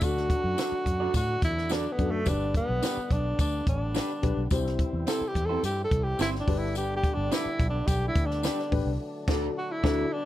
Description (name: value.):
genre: uptempo 1960s-style soul.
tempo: 107 BPM.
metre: 4/4.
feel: straight.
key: G major.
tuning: A4 = 439 Hz.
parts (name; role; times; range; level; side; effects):
breathy tenor saxophone; melody; 0.0-10.3 s; A3 to A4; -30 LUFS; equal; none.
dark upright piano; accompaniment; 0.0-10.0 s; G2 to C5; -33 LUFS; left 4 dB; none.
percussive tonewheel organ; sustained chords; 0.0-10.3 s; D3 to E4; -39 LUFS; left 1 dB; fast rotary speaker, overdrive.
vintage muted fingered electric bass; bass; 0.0-10.0 s; G1 to A2; -31 LUFS; equal; none.
compact cocktail drum kit; drums; 0.0-10.0 s; crash cymbal, hi-hat, kick drum, snare drum; -28 LUFS; equal; none.
tambourine; percussion; 0.0-8.6 s; none; -41 LUFS; left 7 dB; none.
electric guitar through a small old amp; stabs; 0.6-10.0 s; C4 to D5; -36 LUFS; right 4 dB; none.
room: light reverb.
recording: none.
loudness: -25 LUFS.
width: side -14 dB against mid.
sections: 0.0-10.3 A section.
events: tenor saxophone solo 0.0-10.3; band accent 9.0-10.3.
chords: 0.0 D; 2.3 G; 4.5 C; 6.5 G; 9.0 D.